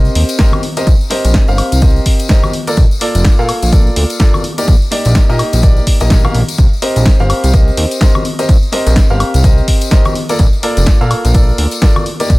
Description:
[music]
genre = piano house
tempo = 126 BPM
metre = 4/4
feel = swing 59% on 16ths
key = C dorian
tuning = A4 = 444 Hz
[part]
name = clear upright piano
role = riff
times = 0.0-12.3 s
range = Bb3 to F5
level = -18 LUFS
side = equal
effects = sidechain pumping, dub echo
[part]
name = fat analog bass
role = bass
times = 0.0-12.4 s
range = F1 to Bb2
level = -12 LUFS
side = equal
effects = sidechain pumping
[part]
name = tambourine and congas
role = percussion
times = 0.0-12.4 s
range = none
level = -23 LUFS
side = left 3 dB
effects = none
[part]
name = punchy analog drum machine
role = drums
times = 0.2-12.4 s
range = hi-hat, snare drum, woodblock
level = -19 LUFS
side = equal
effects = none
[part]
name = electronic kick drum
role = drums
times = 0.4-12.4 s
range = none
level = -10 LUFS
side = equal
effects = none
[sound]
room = little or no reverb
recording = none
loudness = -9 LUFS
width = side -21 dB against mid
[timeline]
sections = 0.0-12.4 A section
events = none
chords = 0.0 Cm7; 2.5 Bbmaj7; 4.4 Ebmaj7/Bb; 6.6 Cm7; 10.2 Bbmaj7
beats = 0.39 | 0.87 1.34 1.82 2.30 | 2.77 3.25 3.73 4.20 | 4.68 5.16 5.63 6.11 | 6.58 7.06 7.54 8.01 | 8.49 8.96 9.44 9.92 | 10.39 10.87 11.35 11.82 | 12.30

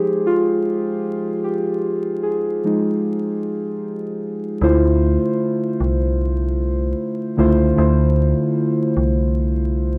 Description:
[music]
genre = lo-fi hip hop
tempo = 76 BPM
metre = 4/4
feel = swing 63% on 16ths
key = D minor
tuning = A4 = 441 Hz
[part]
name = muted felt-like synth keys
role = accompaniment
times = 0.0-10.0 s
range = D3 to C5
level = -21 LUFS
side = equal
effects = chorus, cassette tape, low-pass filter, plate reverb
[part]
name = metallic FM bass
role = bass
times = 4.6-10.0 s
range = C2 to D2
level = -21 LUFS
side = equal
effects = none
[sound]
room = moderate studio reverb, RT60 0.7 s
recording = dark, warm production, vinyl crackle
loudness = -20 LUFS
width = mono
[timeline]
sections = 0.0-4.6 A section; 4.6-10.0 B section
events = synth keys solo 0.0-4.6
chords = 0.0 Fm9; 4.6 Dm9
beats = 0.66 | 1.45 2.24 3.03 3.82 | 4.61 5.39 6.18 6.97 | 7.76 8.55 9.34

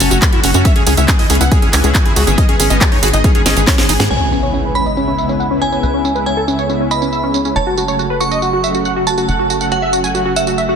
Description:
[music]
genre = uplifting trance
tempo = 139 BPM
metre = 4/4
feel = straight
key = C# minor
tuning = A4 = 440 Hz
[part]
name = supersaw stab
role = melody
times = 0.0-10.8 s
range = C#4 to B5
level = -18 LUFS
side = equal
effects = sidechain pumping, low-pass filter, dub echo
[part]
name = analog string pad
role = sustained chords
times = 0.0-10.8 s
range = C#3 to G#4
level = -20 LUFS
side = equal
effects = ensemble chorus, sidechain pumping
[part]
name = liquid acid bass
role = arpeggios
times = 0.0-4.0 s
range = C#3 to F#4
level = -21 LUFS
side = equal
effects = phaser, sidechain pumping, dub echo
[part]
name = tight sequencer bass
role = bass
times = 0.0-10.8 s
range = F#1 to G#2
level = -19 LUFS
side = equal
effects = sidechain pumping
[part]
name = techno drum kit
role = drums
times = 0.0-10.7 s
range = crash cymbal, handclaps, hi-hat, snare drum, tambourine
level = -18 LUFS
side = right 2 dB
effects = low-pass filter on hats, low-pass filter on perc, low-pass filter on snare, low-pass filter on cymbals, low-pass filter on room
[part]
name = electronic kick drum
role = drums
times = 0.2-3.8 s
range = none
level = -14 LUFS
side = equal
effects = none
[part]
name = glassy synth bell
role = second line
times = 4.1-10.8 s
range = E5 to C#6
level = -19 LUFS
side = right 2 dB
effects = chorus, dub echo
[part]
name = impact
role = sound effects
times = 4.1-5.8 s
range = none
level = -22 LUFS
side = equal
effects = none
[sound]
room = light reverb, digital ambience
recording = dense, heavily limited modern master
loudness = -11 LUFS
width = side -7 dB against mid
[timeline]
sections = 0.0-4.1 A section; 4.1-10.8 B section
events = drop 0.0-4.1; drum fill 3.5-4.1; band accent 4.0; impact 4.1-5.8; filter sweep on drum 4.1-10.8; filter sweep on supersaw synth 4.1-10.8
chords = 0.0 F#m; 0.7 C#m7; 2.4 G#m; 4.1 C#m7; 7.6 F#m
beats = 0.22 | 0.65 1.08 1.51 1.95 | 2.38 2.81 3.24 3.67 | 4.11 4.54 4.97 5.40 | 5.83 6.26 6.70 7.13 | 7.56 7.99 8.42 8.85 | 9.29 9.72 10.15 10.58

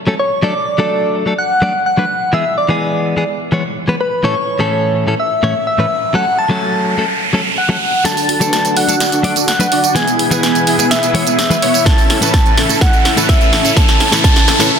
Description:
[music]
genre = EDM, festival progressive house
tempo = 126 BPM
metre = 4/4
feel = straight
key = A major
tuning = A4 = 440 Hz
[part]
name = direct-recorded clean electric guitar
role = accompaniment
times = 0.1-14.7 s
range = A2 to D5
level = -18 LUFS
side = left 2 dB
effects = sidechain pumping, tape echo
[part]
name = soft struck synth lead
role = melody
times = 0.2-14.7 s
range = B4 to A5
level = -16 LUFS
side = left 1 dB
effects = chorus, tape echo
[part]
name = riser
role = sound effects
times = 5.2-14.7 s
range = none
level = -22 LUFS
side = right 2 dB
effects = none
[part]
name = dense compressed supersaw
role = riff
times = 8.1-14.8 s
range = B3 to D5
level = -17 LUFS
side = right 1 dB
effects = sidechain pumping, low-pass filter, tape echo
[part]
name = big-room dance drum kit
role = drums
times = 8.1-14.7 s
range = hi-hat, snare drum, tambourine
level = -16 LUFS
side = right 3 dB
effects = high-pass filter on snare, low-pass filter on snare, small room reverb, high-pass filter on hats, low-pass filter on hats, high-pass filter on perc, low-pass filter on perc
[part]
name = electronic kick drum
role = drums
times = 11.9-14.3 s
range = none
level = -12 LUFS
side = right 1 dB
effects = small room reverb
[sound]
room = wet concert hall reverb, RT60 2.0 s, digital ambience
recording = dense, heavily limited modern master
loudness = -11 LUFS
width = side -7 dB against mid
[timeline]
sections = 0.0-8.1 A section; 8.1-14.8 B section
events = riser 5.2-8.1, 8.1-14.7; build-up 8.1-14.8; drum fill 8.1-14.7; filter sweep on supersaw synth 8.1-14.8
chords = 0.4 D; 2.3 E; 4.2 A; 6.1 F#m; 8.1 D; 10.0 E; 11.9 Aadd9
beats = | 0.43 0.91 1.39 1.86 | 2.34 2.81 3.29 3.77 | 4.24 4.72 5.20 5.67 | 6.15 6.62 7.10 7.58 | 8.05 8.53 9.00 9.48 | 9.96 10.43 10.91 11.38 | 11.86 12.34 12.81 13.29 | 13.77 14.24 14.72

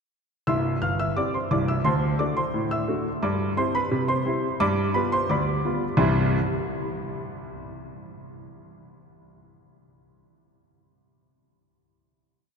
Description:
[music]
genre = ragtime piano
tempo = 87 BPM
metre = 2/4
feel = straight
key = C major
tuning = A4 = 440 Hz
[part]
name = clear concert grand piano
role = solo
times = 0.5-6.4 s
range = C1 to F6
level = -23 LUFS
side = equal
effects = none
[sound]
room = wet cathedral reverb, RT60 5.5 s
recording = recorded in a church or concert hall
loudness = -22 LUFS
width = side -5 dB against mid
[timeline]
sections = 0.5-6.0 A section; 6.0-7.4 final chord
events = none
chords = 0.5 C; 1.8 D7; 3.2 C/G; 4.6 G7; 6.0 C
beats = | 0.47 1.16 | 1.85 2.54 | 3.22 3.91 | 4.59 5.29 | 5.98

